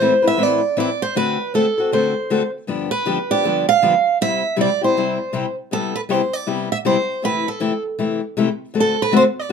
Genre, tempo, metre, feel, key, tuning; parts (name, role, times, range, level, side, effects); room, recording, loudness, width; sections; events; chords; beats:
jazz; 158 BPM; 4/4; swing 61% on 8ths; C major; A4 = 438 Hz
picked steel-string acoustic guitar; melody; 0.0-9.5 s; A4 to F5; -18 LUFS; right 4 dB
picked steel-string acoustic guitar; accompaniment; 0.0-9.5 s; G2 to B4; -20 LUFS; left 6 dB
light reverb; minimal, uncompressed stereo recording; -17 LUFS; side -6 dB against mid
0.0-5.7 A section; 5.7-9.5 B section
0.0 Amadd9; 1.2 D7; 2.7 G7; 4.2 C; 5.7 Cmaj7; 7.2 Am7/C; 8.7 D7
0.02 0.40 0.78 | 1.16 1.54 1.92 2.30 | 2.68 3.06 3.44 3.82 | 4.20 4.58 4.96 5.34 | 5.71 6.09 6.47 6.85 | 7.23 7.61 7.99 8.37 | 8.75 9.13 9.51